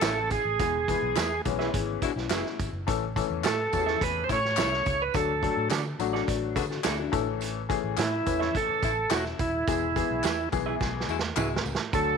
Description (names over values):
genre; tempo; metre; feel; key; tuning
uptempo 1960s-style soul; 106 BPM; 4/4; straight; A major; A4 = 440 Hz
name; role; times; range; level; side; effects
bright tonewheel organ; melody; 0.0-12.2 s; E4 to C#5; -28 LUFS; right 3 dB; overdrive, slow rotary speaker
clear saxophone section; second line; 0.0-12.2 s; B2 to F#4; -35 LUFS; left 13 dB; none
electric guitar through a small old amp; stabs; 0.0-11.5 s; D4 to E5; -35 LUFS; right 11 dB; none
vintage muted fingered electric bass; bass; 0.0-12.2 s; D#1 to D3; -34 LUFS; equal; none
vintage drum kit; drums; 0.0-12.1 s; hi-hat, kick drum, snare drum, toms; -32 LUFS; right 4 dB; none
handclaps and tambourine; percussion; 0.0-12.1 s; none; -39 LUFS; left 4 dB; none
clear upright piano; accompaniment; 0.6-12.2 s; E3 to B4; -31 LUFS; left 14 dB; none
hollow-body jazz guitar; riff; 1.6-2.8, 6.3-7.3 s; C#4 to D5; -35 LUFS; left 12 dB; none
room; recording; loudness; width
light reverb, small room ambience; 1960s-style stereo with parts hard left and right; -25 LUFS; side -6 dB against mid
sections
0.0-11.9 A section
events
drum fill 10.8-11.9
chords
0.0 A; 0.6 E; 2.9 A; 5.1 D; 7.1 A; 9.7 E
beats
0.02 | 0.59 1.17 1.74 2.31 | 2.87 3.44 4.01 4.58 | 5.15 5.71 6.28 6.85 | 7.41 7.98 8.54 9.11 | 9.68 10.24 10.80 11.37 | 11.93